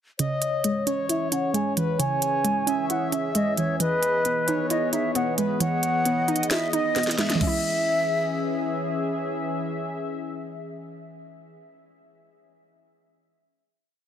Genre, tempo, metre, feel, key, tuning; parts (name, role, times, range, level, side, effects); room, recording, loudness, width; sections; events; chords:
hip hop, trap; 133 BPM; 4/4; half-time; C# minor; A4 = 439 Hz
mellow hollow silver concert flute; melody; 0.2-8.7 s; B4 to G#5; -27 LUFS; right 1 dB; low-pass filter, ping-pong delay
breathy flute-like synth lead; second line; 0.2-8.7 s; B4 to E5; -32 LUFS; left 4 dB; chorus, ping-pong delay
hollow square pluck; accompaniment; 0.2-11.6 s; C#3 to E4; -27 LUFS; right 2 dB; chorus, low-pass filter
sweeping resonant pad; sustained chords; 0.2-11.6 s; E3 to E5; -30 LUFS; left 2 dB; chorus, low-pass filter
trap drum kit; drums; 0.2-7.5 s; crash cymbal, hi-hat, kick drum, snare drum; -27 LUFS; equal
little or no reverb; dense, heavily limited modern master; -22 LUFS; side -9 dB against mid
0.2-7.4 breakdown; 7.4-11.0 final chord
filter sweep 0.2-7.4; drum fill 7.0-7.4
0.2 C#m; 3.8 Emaj7; 7.4 C#m